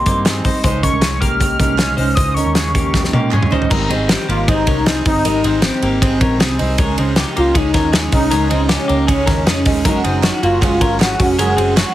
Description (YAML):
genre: jangly indie pop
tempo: 156 BPM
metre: 4/4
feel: straight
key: Ab major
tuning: A4 = 440 Hz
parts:
  - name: warm velvety synth lead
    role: melody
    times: 0.0-11.7 s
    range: C4 to F6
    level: -19 LUFS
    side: left 1 dB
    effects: chorus, tape echo
  - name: picked steel-string acoustic guitar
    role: accompaniment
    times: 0.0-11.9 s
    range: Ab2 to Gb4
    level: -21 LUFS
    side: right 4 dB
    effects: none
  - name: twelve-string electric guitar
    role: arpeggios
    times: 0.0-11.9 s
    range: Bb3 to C5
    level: -22 LUFS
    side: left 3 dB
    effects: tape echo
  - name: vintage muted picked electric bass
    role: bass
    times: 0.0-11.8 s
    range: Eb1 to Bb2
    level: -20 LUFS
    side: equal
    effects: none
  - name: loose indie drum kit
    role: drums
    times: 0.1-11.9 s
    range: crash cymbal, hi-hat, kick drum, ride cymbal, snare drum, toms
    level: -17 LUFS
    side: equal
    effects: none
  - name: group handclap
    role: percussion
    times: 0.3-3.4, 10.2-11.9 s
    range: none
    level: -30 LUFS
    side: right 8 dB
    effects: none
room: light reverb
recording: heavily compressed radio sound, multiband compression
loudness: -13 LUFS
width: side -13 dB against mid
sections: 0.0-3.7 A section; 3.7-11.9 B section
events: drum fill 2.9-3.7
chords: 0.0 Abmaj7; 0.6 Dbsus2; 3.7 Abmaj7; 6.8 Dbsus2; 9.8 Gbsus2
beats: 0.26 | 0.64 1.02 1.41 1.79 | 2.18 2.56 2.95 3.33 | 3.71 4.10 4.48 4.87 | 5.25 5.63 6.01 6.40 | 6.78 7.17 7.55 7.93 | 8.31 8.70 9.08 9.46 | 9.85 10.23 10.62 11.00 | 11.38 11.77